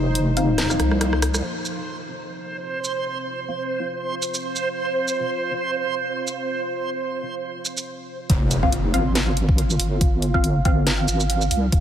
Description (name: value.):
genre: deep dubstep.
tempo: 140 BPM.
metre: 4/4.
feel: swing 56% on 16ths, half-time.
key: F minor.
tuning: A4 = 440 Hz.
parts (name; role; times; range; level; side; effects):
deep dark ambient pad; sustained chords; 0.0-11.8 s; F3 to F5; -29 LUFS; equal; chorus, built-in reverb.
deep soft wobble bass; bass; 0.0-1.4, 8.3-11.8 s; F1 to C2; -21 LUFS; equal; chorus.
backwards swelling texture; texture; 0.0-7.9 s; C5; -27 LUFS; right 3 dB; built-in reverb.
garage drum kit; drums; 0.2-11.8 s; hi-hat, rim click, shaker, snare drum; -26 LUFS; right 1 dB; studio reverb.
filtered dub chord stab; stabs; 0.4-11.8 s; C4 to F5; -29 LUFS; left 1 dB; phaser, wide subtle chorus, dub echo.
electronic kick drum; drums; 8.3-11.8 s; none; -19 LUFS; equal; overdrive, studio reverb.
impact; sound effects; 8.3-10.0 s; none; -28 LUFS; equal; none.
room: light reverb, digital ambience.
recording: none.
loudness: -20 LUFS.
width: side -10 dB against mid.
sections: 0.0-1.4 A section; 1.4-8.3 B section; 8.3-11.8 A section.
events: drop 0.0-1.4, 8.3-11.8; drum fill 0.6-1.4; band accent 1.3; break 7.9-8.3; impact 8.3-10.0.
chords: 0.0 F5.